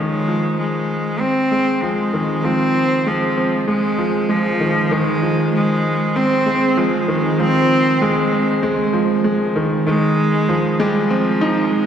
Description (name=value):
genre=electronica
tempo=97 BPM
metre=4/4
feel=straight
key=F minor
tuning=A4 = 441 Hz
part: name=clear cello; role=melody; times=0.0-11.9 s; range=F3 to C4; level=-18 LUFS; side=right 1 dB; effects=shimmer reverb
part: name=clear grand piano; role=riff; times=0.0-11.9 s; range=Eb3 to Eb4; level=-18 LUFS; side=equal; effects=shimmer reverb
room=wet scoring stage reverb, RT60 1.8 s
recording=none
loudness=-15 LUFS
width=side -8 dB against mid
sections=0.0-9.9 A section; 9.9-11.9 B section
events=build-up 0.0-9.9; break 8.6-9.9; drop 9.9-11.9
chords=0.0 Fm7